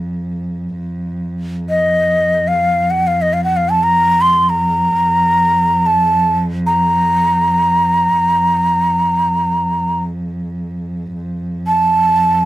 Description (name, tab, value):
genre	Arabic maqam ensemble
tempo	free time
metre	none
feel	none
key	F maqam hijaz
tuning	A4 = 440 Hz
part	dark cello	drone	0.0-12.5 s	F2	-20 LUFS	right 1 dB	none
part	breathy ney	melody	1.7-12.5 s	Eb5 to C6	-12 LUFS	equal	none
room	light reverb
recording	close, detailed microphones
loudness	-13 LUFS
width	side -15 dB against mid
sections	0.8-12.5 A section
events	none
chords	none